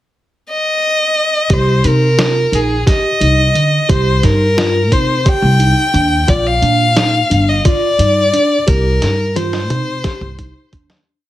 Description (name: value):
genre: progressive instrumental, band music in an uneven meter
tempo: 176 BPM (eighths)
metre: 7/8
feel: straight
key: C minor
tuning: A4 = 438 Hz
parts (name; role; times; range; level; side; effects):
- rich violin; melody; 0.5-10.7 s; Ab4 to G5; -15 LUFS; left 2 dB; plate reverb, ping-pong delay
- tine electric piano; arpeggios; 1.5-10.9 s; D3 to G4; -19 LUFS; right 2 dB; phaser, ping-pong delay
- upright bass; bass; 1.5-11.0 s; G1 to C3; -15 LUFS; equal; none
- lo-fi sampler-style drum kit; drums; 1.5-11.1 s; hi-hat, kick drum, snare drum, toms; -15 LUFS; equal; none
room: moderate studio reverb, RT60 0.6 s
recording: heavily compressed radio sound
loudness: -11 LUFS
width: side -14 dB against mid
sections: 0.0-1.5 pickup bar; 1.5-11.1 A section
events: fade-out 8.7-11.1; drum fill 9.0-11.1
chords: 0.0 N.C.; 1.5 Cm7; 6.3 Bb; 8.7 Cm